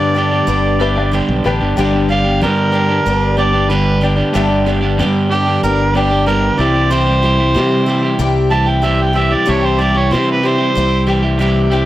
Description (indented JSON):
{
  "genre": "rock",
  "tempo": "93 BPM",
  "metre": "4/4",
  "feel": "straight",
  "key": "G major",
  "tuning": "A4 = 440 Hz",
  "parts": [
    { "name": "mellow harmonica", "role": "melody", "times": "0.0-11.1 s", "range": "G4 to A5", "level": "-17 LUFS", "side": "right 2 dB", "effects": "none" },
    { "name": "warm upright piano", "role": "second line", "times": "0.0-1.8 s", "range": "B4 to D5", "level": "-24 LUFS", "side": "left 5 dB", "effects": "none" },
    { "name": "clear concert grand piano", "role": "accompaniment", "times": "0.0-11.9 s", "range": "B3 to A5", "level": "-26 LUFS", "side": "left 4 dB", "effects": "none" },
    { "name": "picked twelve-string acoustic guitar", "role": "accompaniment", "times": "0.0-11.9 s", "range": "G2 to G4", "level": "-20 LUFS", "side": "left 4 dB", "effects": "none" },
    { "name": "electric guitar at the edge of break-up", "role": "riff", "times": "0.0-11.9 s", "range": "G2 to G4", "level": "-17 LUFS", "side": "right 3 dB", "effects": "none" },
    { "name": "fingered electric bass", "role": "bass", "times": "0.0-11.9 s", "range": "G1 to C3", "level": "-17 LUFS", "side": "equal", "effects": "none" }
  ],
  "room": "light reverb, small room ambience",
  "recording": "none",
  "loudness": "-12 LUFS",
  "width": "side -14 dB against mid",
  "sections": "0.0-1.8 A section; 1.8-11.9 B section",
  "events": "harmonica solo 1.8-11.9",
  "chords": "0.0 G; 6.6 C"
}